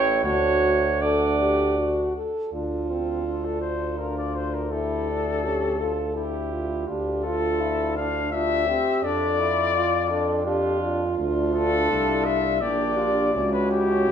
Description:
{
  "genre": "classical, brass quintet",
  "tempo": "83 BPM",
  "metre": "3/4",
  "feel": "rubato",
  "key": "D minor",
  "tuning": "A4 = 440 Hz",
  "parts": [
    { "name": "dark trumpet", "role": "melody", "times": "0.0-14.1 s", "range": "F4 to G5", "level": "-26 LUFS", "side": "left 4 dB", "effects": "none" },
    { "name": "clear flugelhorn", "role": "second line", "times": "0.0-14.1 s", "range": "E4 to D5", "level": "-29 LUFS", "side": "right 5 dB", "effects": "none" },
    { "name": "bright trombone", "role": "accompaniment", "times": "0.0-14.1 s", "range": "C4 to F4", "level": "-30 LUFS", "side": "right 1 dB", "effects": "none" },
    { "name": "bright bass trombone", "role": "bass", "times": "0.0-14.1 s", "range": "A1 to F2", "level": "-29 LUFS", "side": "equal", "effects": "none" },
    { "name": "warm French horn", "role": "accompaniment", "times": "0.2-14.1 s", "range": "D4 to A4", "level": "-27 LUFS", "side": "equal", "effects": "none" }
  ],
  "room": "wet stone room reverb, RT60 1.3 s",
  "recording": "minimal, uncompressed stereo recording",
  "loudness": "-21 LUFS",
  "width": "side -8 dB against mid",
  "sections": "0.0-2.5 A section; 2.5-14.1 A section",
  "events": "none",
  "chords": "0.2 D; 2.5 Dm; 4.7 A7/D; 6.9 Dm; 9.0 Dm/F; 11.2 Dm; 12.6 Gm/Bb; 13.3 C#dim"
}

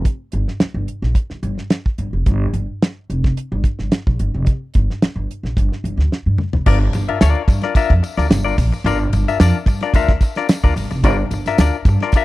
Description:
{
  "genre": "funk",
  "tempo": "109 BPM",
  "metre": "4/4",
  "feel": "straight",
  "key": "G dorian",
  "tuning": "A4 = 440 Hz",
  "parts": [
    { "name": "damped 70s drum kit", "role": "drums", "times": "0.1-12.2 s", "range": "crash cymbal, hi-hat, kick drum, ride cymbal, snare drum, toms", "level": "-16 LUFS", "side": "equal", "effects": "none" },
    { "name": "upright bass", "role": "bass", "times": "0.3-12.2 s", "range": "F1 to G2", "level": "-18 LUFS", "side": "equal", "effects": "transformer saturation" },
    { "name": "clean electric guitar", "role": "accompaniment", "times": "6.7-12.2 s", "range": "D4 to E5", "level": "-21 LUFS", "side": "left 8 dB", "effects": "spring reverb" },
    { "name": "tambourine", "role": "percussion", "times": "6.7-12.2 s", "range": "none", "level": "-38 LUFS", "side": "left 2 dB", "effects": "none" }
  ],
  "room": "little or no reverb",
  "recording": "dry, close 1970s-style studio recording",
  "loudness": "-15 LUFS",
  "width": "side -18 dB against mid",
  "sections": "0.0-6.7 A section; 6.7-12.2 B section",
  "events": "drum fill 6.1-6.7",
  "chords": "0.0 N.C.; 6.7 Gm7"
}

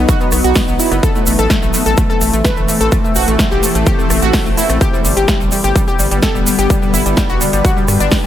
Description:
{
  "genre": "progressive house",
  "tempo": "127 BPM",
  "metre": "4/4",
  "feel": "straight",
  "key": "unclear",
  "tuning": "A4 = 441 Hz",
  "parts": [
    { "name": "shimmering ambient pad", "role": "sustained chords", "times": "0.0-8.3 s", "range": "D3 to D#4", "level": "-19 LUFS", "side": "left 1 dB", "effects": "chorus, built-in reverb, phaser, sidechain pumping" },
    { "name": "analog pluck", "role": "arpeggios", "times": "0.0-8.3 s", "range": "G3 to B4", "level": "-17 LUFS", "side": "left 1 dB", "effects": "chorus, sidechain pumping, digital delay" },
    { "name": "round analog bass", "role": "bass", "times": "0.0-8.3 s", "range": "D1 to G2", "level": "-18 LUFS", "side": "equal", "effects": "sidechain pumping" },
    { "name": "big-room dance drum kit", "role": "drums", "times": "0.1-8.2 s", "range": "hi-hat, rim click, snare drum", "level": "-19 LUFS", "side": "equal", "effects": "overdrive, sidechain pumping on hats, studio reverb" },
    { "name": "electronic kick drum", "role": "drums", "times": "0.1-8.2 s", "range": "none", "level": "-15 LUFS", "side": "equal", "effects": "overdrive, studio reverb" },
    { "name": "egg shaker", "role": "percussion", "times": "0.1-8.3 s", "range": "none", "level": "-24 LUFS", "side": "right 2 dB", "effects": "none" }
  ],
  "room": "digital ambience",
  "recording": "none",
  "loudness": "-11 LUFS",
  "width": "side -11 dB against mid",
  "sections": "0.0-8.3 A section",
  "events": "none",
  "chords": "0.0 B; 1.0 Am; 4.8 G"
}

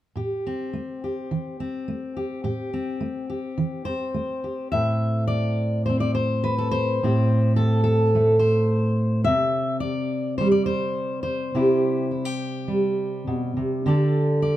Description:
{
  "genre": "folk, solo fingerstyle acoustic guitar",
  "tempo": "105 BPM",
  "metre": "4/4",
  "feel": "rubato",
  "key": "A minor",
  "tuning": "A4 = 440 Hz",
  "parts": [
    { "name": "fingerpicked steel-string acoustic guitar", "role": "solo", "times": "0.2-14.6 s", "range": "A2 to E5", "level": "-21 LUFS", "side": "equal", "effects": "none" }
  ],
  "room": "moderate large studio reverb, RT60 0.9 s",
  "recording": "band playing live in one room",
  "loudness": "-21 LUFS",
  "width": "side -13 dB against mid",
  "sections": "0.2-4.7 A section; 4.7-14.6 B section",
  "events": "none",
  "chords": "0.2 Am7; 9.3 Cadd9; 13.9 Dsus4"
}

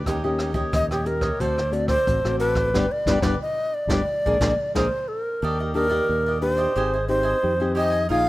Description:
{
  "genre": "samba and choro",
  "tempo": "90 BPM",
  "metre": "4/4",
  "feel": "straight",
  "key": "unclear",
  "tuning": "A4 = 441 Hz",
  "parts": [
    { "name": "cavaquinho", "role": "accompaniment", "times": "0.0-8.3 s", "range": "D4 to Ab5", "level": "-31 LUFS", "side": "right 2 dB", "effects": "none" },
    { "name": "nylon-string guitar", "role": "accompaniment", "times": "0.0-8.3 s", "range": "A2 to G4", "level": "-27 LUFS", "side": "left 2 dB", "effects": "none" },
    { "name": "fingered electric bass with an envelope filter", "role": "bass", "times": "0.0-8.3 s", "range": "G1 to F2", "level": "-28 LUFS", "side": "equal", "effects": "none" },
    { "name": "jazz brush drum kit", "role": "drums", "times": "0.1-4.9 s", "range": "hi-hat, kick drum, rim click, snare drum", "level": "-28 LUFS", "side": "equal", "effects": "none" },
    { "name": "breathy bright long shakuhachi", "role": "melody", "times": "0.7-8.3 s", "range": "G4 to F5", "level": "-23 LUFS", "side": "equal", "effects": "none" }
  ],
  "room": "little or no reverb",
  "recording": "rough home demo mix",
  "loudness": "-20 LUFS",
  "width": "side -17 dB against mid",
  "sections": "0.0-5.4 A section; 5.4-8.3 B section",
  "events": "band accent 2.7-5.4",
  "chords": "0.1 Eb7; 1.4 D7; 2.7 G; 4.1 Bb7; 5.4 Ebmaj7; 6.8 Abmaj7"
}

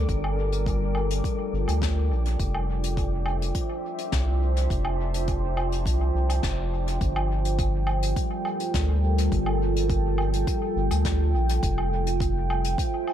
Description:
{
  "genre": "ambient dub",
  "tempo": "104 BPM",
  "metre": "4/4",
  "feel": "straight",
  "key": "G dorian",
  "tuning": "A4 = 440 Hz",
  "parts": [
    { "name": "deep dark ambient pad", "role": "sustained chords", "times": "0.0-13.1 s", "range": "G3 to A5", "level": "-29 LUFS", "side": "right 1 dB", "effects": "chorus, built-in reverb" },
    { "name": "round analog bass", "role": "bass", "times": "0.0-12.8 s", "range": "F1 to D2", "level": "-25 LUFS", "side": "equal", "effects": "tube saturation" },
    { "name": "wind-like tuned noise texture", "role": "texture", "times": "0.0-7.0 s", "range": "D4 to D5", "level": "-40 LUFS", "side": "equal", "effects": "built-in reverb" },
    { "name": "electronic kick drum", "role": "drums", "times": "0.1-12.9 s", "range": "none", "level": "-29 LUFS", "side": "equal", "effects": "none" },
    { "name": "vintage brush drum kit", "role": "drums", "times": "0.1-13.1 s", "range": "hi-hat, snare drum, woodblock", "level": "-34 LUFS", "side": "left 1 dB", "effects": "dub echo" }
  ],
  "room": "little or no reverb",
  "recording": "none",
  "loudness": "-23 LUFS",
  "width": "side -10 dB against mid",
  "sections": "0.0-7.0 A section; 7.0-13.1 B section",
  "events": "band accent 6.4",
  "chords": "0.0 Gm7; 2.4 Fmaj7; 7.0 Gm7; 11.6 Fmaj7"
}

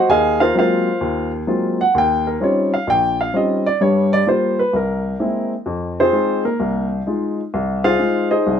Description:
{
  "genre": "solo jazz",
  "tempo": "129 BPM",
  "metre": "4/4",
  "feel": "swing 68% on 8ths",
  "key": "unclear",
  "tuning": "A4 = 441 Hz",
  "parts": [
    { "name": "warm upright piano", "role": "solo", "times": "0.0-8.6 s", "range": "Bb1 to Ab5", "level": "-16 LUFS", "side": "equal", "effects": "none" }
  ],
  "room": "light reverb",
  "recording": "minimal, uncompressed stereo recording",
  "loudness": "-16 LUFS",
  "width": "side -8 dB against mid",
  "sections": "0.0-8.6 A section",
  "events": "upright piano solo 0.0-8.6",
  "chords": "0.0 Ab13; 1.9 Eb13; 3.8 Gm7; 4.7 Caug7; 5.7 Fm7"
}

